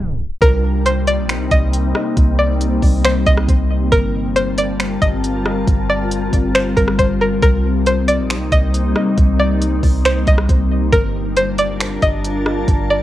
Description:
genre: hip hop, atmospheric cloud-rap.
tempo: 137 BPM.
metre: 4/4.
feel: half-time.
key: unclear.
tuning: A4 = 440 Hz.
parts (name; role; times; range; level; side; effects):
string-like resonator pluck; melody; 0.0-13.0 s; Bb4 to Eb5; -18 LUFS; equal; chorus, low-pass filter, analog delay.
glassy FM pad; sustained chords; 0.0-13.0 s; C3 to A5; -20 LUFS; left 2 dB; ensemble chorus, built-in reverb, sidechain pumping.
soft 808-style bass; bass; 0.0-13.0 s; G1 to C2; -19 LUFS; equal; none.
smooth R&B drum kit; drums; 0.4-12.8 s; finger snaps, hi-hat, kick drum, rim click; -18 LUFS; equal; cassette tape.
room: digital ambience.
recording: home recording on cassette, tape stop.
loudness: -14 LUFS.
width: side -14 dB against mid.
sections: 0.4-13.0 A section.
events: tape stop 0.0-0.4.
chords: 0.4 Cm9; 3.9 Gm9; 7.4 Cm9; 10.9 Gm9.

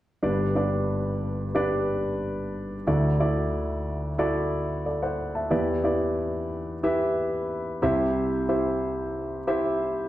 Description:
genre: pop.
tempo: 91 BPM.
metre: 4/4.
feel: straight.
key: G major.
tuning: A4 = 440 Hz.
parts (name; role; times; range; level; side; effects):
warm grand piano; accompaniment; 0.2-10.1 s; G1 to A5; -24 LUFS; equal; none.
room: wet recital hall reverb, RT60 1.4 s.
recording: dark, warm production.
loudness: -24 LUFS.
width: side -14 dB against mid.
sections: 0.2-10.1 A section.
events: none.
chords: 0.2 G; 2.9 Dadd9; 5.5 Em7; 7.8 C.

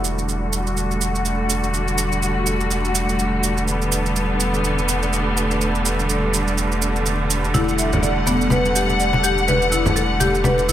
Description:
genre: afro house.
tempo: 124 BPM.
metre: 4/4.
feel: swing 58% on 16ths.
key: E minor.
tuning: A4 = 440 Hz.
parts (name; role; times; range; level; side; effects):
clear symphonic string section; sustained chords; 0.0-10.7 s; D3 to F#5; -21 LUFS; equal; low-pass filter.
warm sub bass; bass; 0.0-10.7 s; E1; -24 LUFS; equal; none.
shaker; drums; 0.0-10.7 s; none; -26 LUFS; right 6 dB; overdrive.
marimba with medium hard mallets; arpeggios; 7.5-10.7 s; B3 to E5; -22 LUFS; left 2 dB; digital delay.
congas; percussion; 7.5-10.7 s; none; -23 LUFS; left 1 dB; none.
room: light reverb.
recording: none.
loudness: -17 LUFS.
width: side -11 dB against mid.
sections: 0.0-10.7 A section.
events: filter sweep on string section 0.0-10.7.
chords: 0.0 Em11.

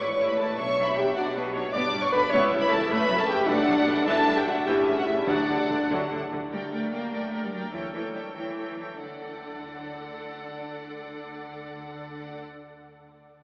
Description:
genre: quick classical-period movement for symphony orchestra.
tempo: 88-104 BPM (dotted quarters).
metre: 6/8.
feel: rubato.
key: D major.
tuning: A4 = 443 Hz.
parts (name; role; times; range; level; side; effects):
warm studio violin section; melody; 0.0-12.4 s; B4 to G5; -34 LUFS; equal; none.
warm studio violin section; second line; 0.0-12.4 s; C#5 to D6; -30 LUFS; equal; none.
rich studio viola section; accompaniment; 0.0-12.4 s; C#3 to Bb4; -32 LUFS; equal; none.
warm French horn section; sustained chords; 0.0-5.9 s; D4 to D5; -26 LUFS; equal; none.
dark studio double bass section; bass; 0.0-12.4 s; F#1 to D2; -43 LUFS; equal; none.
rich studio cello section; bass; 0.0-12.4 s; C#2 to Bb3; -35 LUFS; equal; none.
timpani; percussion; 5.3-5.9 s; D3; -40 LUFS; equal; none.
room: wet cathedral reverb, RT60 5.3 s.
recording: recorded in a church or concert hall, AM radio sound.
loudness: -22 LUFS.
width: side -26 dB against mid.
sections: 0.0-6.5 A section; 6.5-9.0 B section; 9.0-11.7 C section.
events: slowing down 5.9-9.0.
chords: 0.0 A; 0.6 Bm; 1.7 G; 2.3 C#m7b5; 2.9 F#m; 3.5 Bm7; 4.1 Em7; 4.7 A7; 5.3 D; 6.5 Gm/D; 7.7 A7/D; 9.0 D.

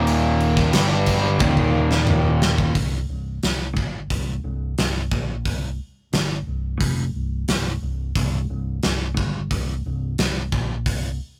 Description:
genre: hard rock.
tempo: 89 BPM.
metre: 4/4.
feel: straight.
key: C minor.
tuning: A4 = 440 Hz.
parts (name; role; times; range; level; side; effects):
cranked stack guitar; riff; 0.0-2.7 s; Eb2 to G3; -23 LUFS; equal; overdrive.
distorted electric guitar; riff; 0.0-2.8 s; Eb2 to G3; -32 LUFS; equal; none.
overdriven semi-hollow guitar; riff; 0.0-2.8 s; Eb2 to G3; -29 LUFS; equal; none.
fingered electric bass; bass; 0.0-11.2 s; C1 to Bb1; -27 LUFS; equal; none.
gated 80s drum kit; drums; 0.1-11.0 s; crash cymbal, hi-hat, kick drum, snare drum, toms; -25 LUFS; equal; none.
room: moderate stone room reverb, RT60 0.9 s.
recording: rough rehearsal-room recording, tube saturation.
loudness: -22 LUFS.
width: mono.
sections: 0.0-2.8 A section; 2.8-11.4 B section.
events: drum fill 1.4-2.8.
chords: 0.0 Eb5; 0.7 G5; 1.4 Eb5; 2.8 C5.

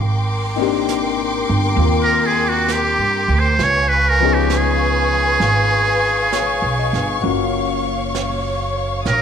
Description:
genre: jazz ballad.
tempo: 66 BPM.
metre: 4/4.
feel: swing 69% on 8ths.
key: unclear.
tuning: A4 = 441 Hz.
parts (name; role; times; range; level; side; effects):
warm symphonic string section; sustained chords; 0.0-9.2 s; Bb4 to Eb6; -22 LUFS; left 1 dB; none.
upright bass; bass; 0.0-9.2 s; Gb1 to G2; -20 LUFS; right 2 dB; none.
warm concert grand piano; accompaniment; 0.6-9.2 s; F3 to Eb5; -22 LUFS; left 12 dB; none.
jazz brush drum kit; drums; 0.9-9.2 s; brushed snare drum, hi-hat, snare drum; -31 LUFS; right 12 dB; none.
trumpet with metal mute; melody; 2.0-9.2 s; Gb4 to Db5; -17 LUFS; right 2 dB; slapback echo.
room: moderate spring reverb, RT60 2.3 s.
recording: 1960s-style stereo with parts hard left and right.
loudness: -15 LUFS.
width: side -8 dB against mid.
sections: 0.0-9.2 A section.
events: muted trumpet solo 0.0-9.2.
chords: 0.0 Abmaj9#11; 3.6 Db7; 7.2 Gbmaj7.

